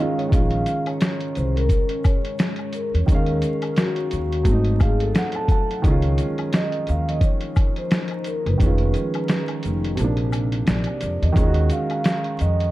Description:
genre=lo-fi hip hop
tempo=87 BPM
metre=4/4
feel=swing 56% on 16ths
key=Bb minor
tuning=A4 = 438 Hz
part: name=vibraphone with soft mallets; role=melody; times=0.0-12.7 s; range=Gb4 to F5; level=-28 LUFS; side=left 1 dB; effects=none
part: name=dark upright piano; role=accompaniment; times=0.0-12.7 s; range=C3 to A5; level=-26 LUFS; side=right 2 dB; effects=cassette tape
part: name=deep dark ambient pad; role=sustained chords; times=0.0-12.7 s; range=F3 to F5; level=-33 LUFS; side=left 1 dB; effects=chorus, built-in reverb
part: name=lo-fi sampler-style drum kit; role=drums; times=0.2-12.7 s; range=hi-hat, kick drum, snare drum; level=-21 LUFS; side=equal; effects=none
part: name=upright bass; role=bass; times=0.3-12.7 s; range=F1 to F2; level=-21 LUFS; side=equal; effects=none
part: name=egg shaker and woodblock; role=percussion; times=0.3-12.6 s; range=none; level=-41 LUFS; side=left 5 dB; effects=none
room=small room ambience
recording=dark, warm production, vinyl crackle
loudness=-19 LUFS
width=side -17 dB against mid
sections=0.3-12.7 A section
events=kick muted 10.0-11.4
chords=0.3 Bbm7; 3.1 Ebm7; 4.5 Ab7b9; 5.8 Db69; 8.6 Fm7b5; 10.0 Bb7; 11.4 Ebm9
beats=| 0.33 1.01 1.71 2.40 | 3.08 3.77 4.46 5.15 | 5.84 6.53 7.22 7.91 | 8.60 9.29 9.98 10.67 | 11.36 12.05

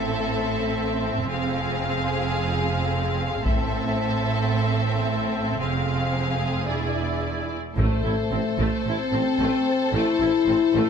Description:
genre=cinematic, epic orchestral film score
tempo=111 BPM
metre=4/4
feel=straight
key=A harmonic minor, A minor from 7.8 s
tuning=A4 = 440 Hz
part: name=warm symphonic violin section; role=melody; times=0.0-10.9 s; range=C5 to F5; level=-31 LUFS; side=left 2 dB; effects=none
part: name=rich chamber violin section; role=second line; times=0.0-10.9 s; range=Ab4 to A4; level=-32 LUFS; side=left 1 dB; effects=none
part: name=rich symphonic viola section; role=accompaniment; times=0.0-10.9 s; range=A3 to E4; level=-31 LUFS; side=right 2 dB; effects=none
part: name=mellow French horn section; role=sustained chords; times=0.0-10.9 s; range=A3 to A4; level=-26 LUFS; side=left 5 dB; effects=none
part: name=dark chamber double bass section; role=bass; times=0.0-10.8 s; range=E1 to A1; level=-29 LUFS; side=right 4 dB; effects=none
part: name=rich symphonic cello section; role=bass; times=0.0-10.8 s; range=E2 to A2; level=-30 LUFS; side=right 3 dB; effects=none
part: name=solo taiko drums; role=drums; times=3.5-4.5, 7.8-8.8 s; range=none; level=-27 LUFS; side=equal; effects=none
part: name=warm tuba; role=bass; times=7.8-10.8 s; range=A1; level=-31 LUFS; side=right 5 dB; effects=none
part: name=timpani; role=percussion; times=7.8-8.5 s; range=A2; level=-31 LUFS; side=left 1 dB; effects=none
room=moderate scoring stage reverb, RT60 1.7 s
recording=close, detailed microphones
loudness=-21 LUFS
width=side -7 dB against mid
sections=0.0-7.8 A section; 7.8-10.9 B section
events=build-up 0.0-7.8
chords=0.0 Am; 1.3 Fm; 3.4 Am; 5.6 Fm; 6.7 E7; 7.8 Am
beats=0.22 0.75 | 1.29 1.83 2.37 2.90 | 3.45 3.99 4.52 5.06 | 5.60 6.14 6.69 7.24 | 7.78 8.32 8.86 9.40 | 9.94 10.47

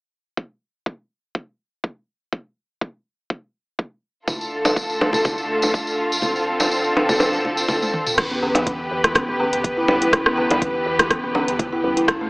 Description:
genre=afro house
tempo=123 BPM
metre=4/4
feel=swing 54% on 16ths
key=E phrygian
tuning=A4 = 441 Hz
part: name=electronic kick drum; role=drums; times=0.4-12.2 s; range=none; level=-26 LUFS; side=equal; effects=high-pass filter on kick
part: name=muted studio string section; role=sustained chords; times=4.3-12.3 s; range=D3 to B4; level=-21 LUFS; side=equal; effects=sidechain pumping
part: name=bongos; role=percussion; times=4.3-12.2 s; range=none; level=-23 LUFS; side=equal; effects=none
part: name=tambourine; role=percussion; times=4.3-8.2 s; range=none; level=-26 LUFS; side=equal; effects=none
part: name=afro-pop drum kit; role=drums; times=7.8-12.2 s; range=crash cymbal, hi-hat, rim click, toms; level=-21 LUFS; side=equal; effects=none
part: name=kalimba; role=arpeggios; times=8.2-12.3 s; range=B2 to E4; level=-24 LUFS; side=equal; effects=vintage 12-bit sampler grit, sidechain pumping
part: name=woody FM bass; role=bass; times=8.2-12.3 s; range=E1 to E2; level=-34 LUFS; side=equal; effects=tube saturation, sidechain pumping
room=moderate lush hall reverb, RT60 1.7 s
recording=AM radio sound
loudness=-18 LUFS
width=side -31 dB against mid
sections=0.4-8.2 A section; 8.2-12.3 B section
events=kick drops out 6.2-8.2; drum fill 7.8-8.2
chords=0.4 N.C.; 4.3 Dm; 6.2 F6; 8.2 Em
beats=| 0.38 0.86 1.35 1.84 | 2.33 2.81 3.30 3.79 | 4.28 4.76 5.25 5.74 | 6.23 6.72 7.20 7.69 | 8.18 8.67 9.15 9.64 | 10.13 10.62 11.11 11.59 | 12.08

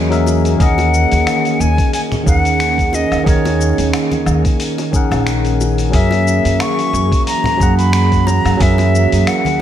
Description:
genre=sunset chillout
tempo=90 BPM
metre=4/4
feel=swing 55% on 16ths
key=unclear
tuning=A4 = 441 Hz
part: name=bright tine electric piano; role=accompaniment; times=0.0-9.6 s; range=D#3 to F#5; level=-18 LUFS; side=moving between left 6 dB and right 7 dB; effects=auto-pan, digital delay
part: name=ethereal airy pad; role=sustained chords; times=0.0-9.6 s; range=D#3 to A#4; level=-22 LUFS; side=right 1 dB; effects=ensemble chorus, built-in reverb, vintage 12-bit sampler grit
part: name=upright bass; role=bass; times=0.0-9.2 s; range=A#1 to F#2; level=-16 LUFS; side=equal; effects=none
part: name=dusty soul sampler-style drum kit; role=drums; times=0.1-9.6 s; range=finger snaps, hi-hat, shaker, woodblock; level=-24 LUFS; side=left 2 dB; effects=none
part: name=bongos and congas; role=percussion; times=0.3-9.6 s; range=none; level=-25 LUFS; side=left 2 dB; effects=none
part: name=silver concert flute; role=melody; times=0.6-9.6 s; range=C#5 to C#6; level=-18 LUFS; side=left 1 dB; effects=tape echo
part: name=electronic kick drum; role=drums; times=0.6-8.7 s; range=none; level=-16 LUFS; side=equal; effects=none
room=light reverb, digital ambience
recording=none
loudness=-12 LUFS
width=side -10 dB against mid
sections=0.0-9.6 A section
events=none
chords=0.0 F#9; 0.6 D#7sus4; 5.9 F#9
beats=| 0.60 1.27 1.93 2.60 | 3.27 3.93 4.60 5.27 | 5.93 6.60 7.27 7.93 | 8.60 9.27

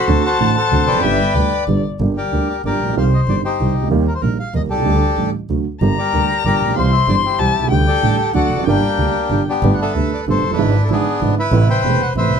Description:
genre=tango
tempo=189 BPM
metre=3/4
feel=rubato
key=G minor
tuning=A4 = 440 Hz
part: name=bandoneon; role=melody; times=0.0-12.4 s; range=Bb3 to A5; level=-19 LUFS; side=left 2 dB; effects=none
part: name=warm violin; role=second line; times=0.0-1.8, 5.8-9.4 s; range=D5 to C6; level=-21 LUFS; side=left 8 dB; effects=none
part: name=warm grand piano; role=accompaniment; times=0.1-12.4 s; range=E1 to G4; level=-19 LUFS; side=right 5 dB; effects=none
part: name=warm double bass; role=bass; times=0.1-12.4 s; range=E1 to Eb2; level=-19 LUFS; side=equal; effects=none
room=light reverb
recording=dark, warm production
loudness=-14 LUFS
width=side -7 dB against mid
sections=0.0-2.0 A section; 2.0-9.6 B section; 9.6-12.4 A section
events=none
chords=0.1 D7; 1.0 G; 2.0 Gm; 3.0 Cm; 3.9 Eb; 4.9 Dsus4; 5.5 D; 5.8 Gm; 6.8 C; 7.7 Dsus4; 8.3 D; 8.7 Gm; 9.6 Gadd9; 10.6 E7/G#; 11.5 Amadd9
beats=| 0.09 0.40 0.71 | 1.03 1.35 1.68 | 2.00 2.32 2.64 | 2.96 3.28 3.60 | 3.91 4.22 4.54 | 4.86 5.18 5.50 | 5.82 6.14 6.46 | 6.77 7.09 7.40 | 7.71 8.03 8.35 | 8.66 8.98 9.31 | 9.63 9.95 10.27 | 10.59 10.90 11.21 | 11.53 11.84 12.16

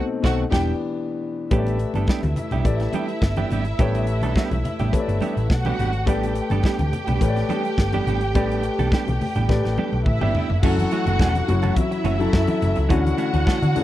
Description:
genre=disco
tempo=105 BPM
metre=4/4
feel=straight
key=unclear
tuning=A4 = 440 Hz
part: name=dark grand piano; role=accompaniment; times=0.0-13.8 s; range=B2 to D5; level=-26 LUFS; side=left 4 dB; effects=none
part: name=warm studio string section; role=second line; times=0.2-13.8 s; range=E4 to G5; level=-28 LUFS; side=right 2 dB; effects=none
part: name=clean electric guitar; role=accompaniment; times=0.2-13.8 s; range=D#3 to A4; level=-27 LUFS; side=right 6 dB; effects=none
part: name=hollow-body short-scale picked electric bass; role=bass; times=0.2-13.7 s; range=E1 to D3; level=-23 LUFS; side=equal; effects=none
part: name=modern studio drum kit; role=drums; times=0.2-13.8 s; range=crash cymbal, hi-hat, kick drum, snare drum, toms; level=-22 LUFS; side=equal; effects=none
part: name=congas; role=percussion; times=1.5-13.8 s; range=none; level=-30 LUFS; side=left 2 dB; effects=none
room=little or no reverb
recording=dry, close 1970s-style studio recording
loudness=-19 LUFS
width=side -14 dB against mid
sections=0.0-1.5 A section; 1.5-10.6 B section; 10.6-13.8 C section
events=band accent 0.0-1.5; drum fill 9.5-10.6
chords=0.4 Em7; 1.5 A9sus4; 10.6 F#m7; 12.9 Dmaj9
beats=0.37 0.94 | 1.51 2.08 2.65 3.22 | 3.79 4.36 4.93 5.50 | 6.07 6.64 7.21 7.78 | 8.35 8.92 9.49 10.06 | 10.63 11.20 11.77 12.34 | 12.90 13.47

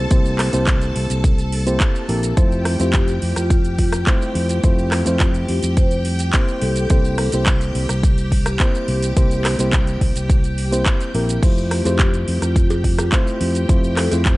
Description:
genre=nu-disco, nu disco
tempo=106 BPM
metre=4/4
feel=straight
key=F major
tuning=A4 = 437 Hz
part: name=reed electric piano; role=accompaniment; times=0.0-14.4 s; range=A3 to C5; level=-23 LUFS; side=equal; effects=sidechain pumping, slapback echo
part: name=string machine, full ensemble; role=sustained chords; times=0.0-14.4 s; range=G4 to A5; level=-30 LUFS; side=equal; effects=ensemble chorus, sidechain pumping
part: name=fingered electric bass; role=bass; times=0.0-14.4 s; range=Bb1 to F2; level=-21 LUFS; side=equal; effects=none
part: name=electronic kick drum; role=drums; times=0.1-14.4 s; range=none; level=-16 LUFS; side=equal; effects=none
part: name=house drum kit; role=drums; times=0.1-14.4 s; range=crash cymbal, handclaps, hi-hat, rim click, shaker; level=-25 LUFS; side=right 1 dB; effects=none
part: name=vibraphone with soft mallets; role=melody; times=2.8-7.4, 11.9-14.4 s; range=F4 to C5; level=-28 LUFS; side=left 2 dB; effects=tape echo
part: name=cowbell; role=percussion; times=11.9-14.2 s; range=none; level=-29 LUFS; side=equal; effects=none
room=little or no reverb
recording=nothing above 11.0 kHz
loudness=-15 LUFS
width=side -19 dB against mid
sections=0.0-14.4 A section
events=none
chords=0.0 C7; 2.4 Fmaj7; 6.6 C7; 11.4 Fmaj7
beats=| 0.11 0.68 1.24 1.81 | 2.37 2.94 3.51 4.07 | 4.64 5.20 5.77 6.34 | 6.90 7.47 8.03 8.60 | 9.17 9.73 10.30 10.86 | 11.43 12.00 12.56 13.13 | 13.70 14.26

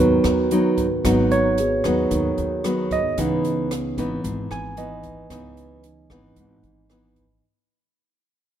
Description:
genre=bossa nova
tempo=113 BPM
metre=4/4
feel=straight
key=unclear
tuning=A4 = 440 Hz
part: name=barky tine electric piano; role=accompaniment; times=0.0-7.5 s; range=E3 to G#5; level=-22 LUFS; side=right 3 dB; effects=none
part: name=nylon-string guitar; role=accompaniment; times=0.0-7.4 s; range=G#2 to D#4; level=-23 LUFS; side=left 1 dB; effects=none
part: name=upright bass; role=bass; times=0.0-7.4 s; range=G#1 to D#2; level=-30 LUFS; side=left 1 dB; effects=none
part: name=open jazz drum kit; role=drums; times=0.2-7.3 s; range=hi-hat, kick drum, rim click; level=-31 LUFS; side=left 1 dB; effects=none
room=moderate lush hall reverb, RT60 1.7 s, small room ambience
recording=rough home demo mix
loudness=-19 LUFS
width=side -10 dB against mid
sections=0.0-7.4 A section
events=fade-out 0.0-7.4; tine electric piano solo 0.0-7.4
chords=0.0 G#m7; 3.2 C#m9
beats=0.51 | 1.05 1.58 2.11 2.64 | 3.17 3.71 4.24 4.77 | 5.30 5.84 6.37 6.90

